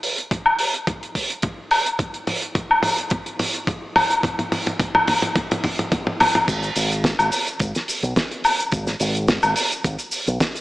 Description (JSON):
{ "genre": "nu-disco, nu disco", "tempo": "107 BPM", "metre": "4/4", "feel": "swing 53% on 16ths", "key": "G# minor", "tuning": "A4 = 440 Hz", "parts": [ { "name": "damped 70s drum kit", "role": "drums", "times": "0.0-10.6 s", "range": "crash cymbal, hi-hat, shaker, snare drum, toms, woodblock", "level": "-19 LUFS", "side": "equal", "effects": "small room ambience" }, { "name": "electronic kick drum", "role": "drums", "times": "0.3-10.5 s", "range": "none", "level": "-26 LUFS", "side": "equal", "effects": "overdrive, small room ambience" }, { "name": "fingered electric bass with an envelope filter", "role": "bass", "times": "6.5-10.4 s", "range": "G#1 to B1", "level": "-24 LUFS", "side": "equal", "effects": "none" } ], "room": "wet plate reverb, RT60 2.5 s", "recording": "small speaker sound", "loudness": "-19 LUFS", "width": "side -17 dB against mid", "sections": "0.0-6.5 A section; 6.5-10.6 B section", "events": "build-up 0.0-6.5; drum fill 0.0-6.5; drop 6.5-10.6", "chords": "none", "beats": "0.31 0.87 1.44 | 2.00 2.56 3.12 3.68 | 4.24 4.80 5.36 5.92 | 6.48 7.04 7.60 8.16 | 8.72 9.29 9.85 10.41" }